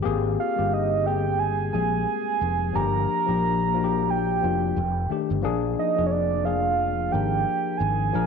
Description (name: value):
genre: R&B, neo-soul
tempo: 89 BPM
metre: 4/4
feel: swing 57% on 16ths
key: unclear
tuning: A4 = 441 Hz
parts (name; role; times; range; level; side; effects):
- tine electric piano; accompaniment; 0.0-8.3 s; Eb3 to Bb4; -27 LUFS; left 12 dB; overdrive, fast stereo tremolo
- fretless electric bass; bass; 0.1-8.3 s; F1 to Bb1; -27 LUFS; equal; ensemble chorus
- soft octave-layered synth lead; melody; 0.4-8.3 s; Db5 to Bb5; -25 LUFS; right 8 dB; chorus
room: moderate echo chamber reverb, RT60 1.8 s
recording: 1960s-style stereo with parts hard left and right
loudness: -22 LUFS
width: side -6 dB against mid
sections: 0.0-8.3 A section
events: none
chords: 0.0 Abmaj9; 2.7 Gm7; 4.8 F13; 5.4 Bb7